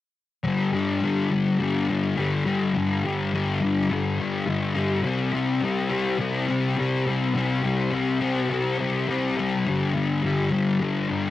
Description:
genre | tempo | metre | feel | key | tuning
rock | 104 BPM | 4/4 | straight | unclear | A4 = 439 Hz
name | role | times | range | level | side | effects
thick fuzz guitar | solo | 0.4-11.3 s | G2 to C4 | -22 LUFS | left 2 dB | distortion, analog chorus, cassette tape
room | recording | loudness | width
light reverb | home recording on cassette | -22 LUFS | side -14 dB against mid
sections
0.4-11.3 A section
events
none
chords
0.4 G5; 5.1 C5; 9.7 G5

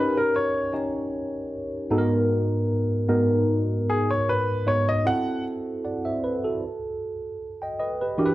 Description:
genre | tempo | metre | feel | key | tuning
soul | 76 BPM | 4/4 | swing 54% on 16ths | unclear | A4 = 440 Hz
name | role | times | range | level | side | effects
clear grand piano | melody | 0.0-5.4 s | G#4 to F#5 | -24 LUFS | left 1 dB | none
mellow tine electric piano | accompaniment | 0.0-8.3 s | G#2 to G5 | -23 LUFS | equal | phaser
room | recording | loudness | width
moderate echo chamber reverb, RT60 1.3 s, small room ambience | dark, warm production | -22 LUFS | side -16 dB against mid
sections
0.0-8.3 A section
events
grand piano solo 0.0-8.3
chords
0.0 D#7; 1.9 G#m9; 5.1 F#m7b5; 6.6 N.C.

